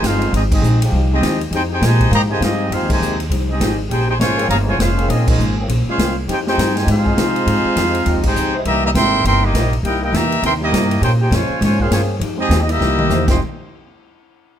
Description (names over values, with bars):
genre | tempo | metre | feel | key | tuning
jazz, big band swing | 202 BPM | 4/4 | swing 61% on 8ths | F minor | A4 = 440 Hz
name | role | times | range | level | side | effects
clear trumpet section | melody | 0.0-13.4 s | Bb3 to C6 | -20 LUFS | equal | none
clear trombone section | second line | 0.0-13.4 s | F2 to G4 | -23 LUFS | right 2 dB | none
vintage hollow-body jazz guitar | accompaniment | 0.0-13.4 s | C3 to C5 | -26 LUFS | left 4 dB | none
upright bass | bass | 0.0-13.4 s | F1 to C3 | -18 LUFS | equal | none
swinging big-band drum kit | drums | 0.0-13.3 s | crash cymbal, hi-hat, kick drum, ride cymbal, snare drum, toms | -22 LUFS | equal | none
muted trombone section | sustained chords | 0.8-13.4 s | Db3 to C5 | -28 LUFS | left 1 dB | none
room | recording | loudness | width
light reverb | close, detailed microphones | -14 LUFS | side -10 dB against mid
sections
0.0-13.4 A section; 13.4-14.6 B section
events
band accent 0.5, 2.9, 5.2, 8.2; drum fill 12.8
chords
0.0 Fm9; 3.9 Bbm9; 6.3 Fm9; 8.7 C7#9; 11.0 Bbm9; 12.2 Fm9; 12.8 C7#9; 13.2 Fm9; 13.4 N.C.